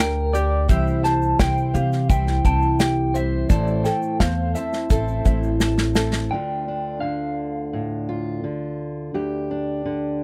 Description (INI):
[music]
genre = indie folk with a building arrangement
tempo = 85 BPM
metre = 4/4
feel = straight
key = D minor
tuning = A4 = 440 Hz
[part]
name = electric guitar through a small old amp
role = melody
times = 0.0-8.7 s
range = Bb4 to A5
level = -28 LUFS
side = equal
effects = tremolo
[part]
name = picked twelve-string acoustic guitar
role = accompaniment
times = 0.0-6.3 s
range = A2 to C5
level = -28 LUFS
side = equal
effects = none
[part]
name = ukulele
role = arpeggios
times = 0.0-6.3 s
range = G4 to A5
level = -33 LUFS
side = equal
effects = none
[part]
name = upright bass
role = bass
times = 0.0-6.3 s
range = A1 to C3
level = -25 LUFS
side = equal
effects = none
[part]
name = egg shaker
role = percussion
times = 0.0-6.2 s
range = none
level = -47 LUFS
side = equal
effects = none
[part]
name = unplugged drum kit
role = drums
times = 0.3-6.3 s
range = hi-hat, kick drum, snare drum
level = -22 LUFS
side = equal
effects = none
[part]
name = fingerpicked steel-string acoustic guitar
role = accompaniment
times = 6.3-10.2 s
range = D2 to G4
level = -28 LUFS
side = equal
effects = none
[sound]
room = little or no reverb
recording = dry, close 1970s-style studio recording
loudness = -22 LUFS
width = mono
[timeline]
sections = 0.0-6.3 A section; 6.3-10.2 B section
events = drum fill 5.6-6.3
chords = 0.0 Gm/D; 0.7 C; 3.5 Am; 6.3 Dm; 9.1 G5/D